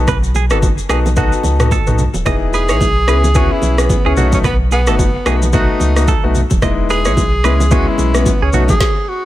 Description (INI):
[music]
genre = afrobeats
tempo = 110 BPM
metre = 4/4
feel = swing 58% on 16ths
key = unclear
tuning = A4 = 439 Hz
[part]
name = clear concert grand piano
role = accompaniment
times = 0.0-8.7 s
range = G#3 to A4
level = -19 LUFS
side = left 4 dB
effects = none
[part]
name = warm sub bass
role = bass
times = 0.0-8.7 s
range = D#1 to C#2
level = -16 LUFS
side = equal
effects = none
[part]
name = direct-recorded clean electric guitar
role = riff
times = 0.1-8.6 s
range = F#4 to D#5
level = -23 LUFS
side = right 8 dB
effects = ping-pong delay
[part]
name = afro-pop drum kit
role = drums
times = 0.1-9.0 s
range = kick drum, rim click, shaker, snare drum, toms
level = -17 LUFS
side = equal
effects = overdrive
[part]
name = congas and bongos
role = percussion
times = 0.1-8.8 s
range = none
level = -24 LUFS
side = right 2 dB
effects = none
[part]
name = breathy tenor saxophone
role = melody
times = 2.5-9.2 s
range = B3 to G#4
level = -19 LUFS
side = right 1 dB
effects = ping-pong delay
[sound]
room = digital ambience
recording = none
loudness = -11 LUFS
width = side -14 dB against mid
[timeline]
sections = 0.0-2.3 A section; 2.3-9.2 B section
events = stop 8.8-9.2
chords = 0.0 B7; 2.3 Emaj7; 3.1 C#m7; 4.2 B7; 6.6 Emaj7; 7.4 C#m7; 8.5 B7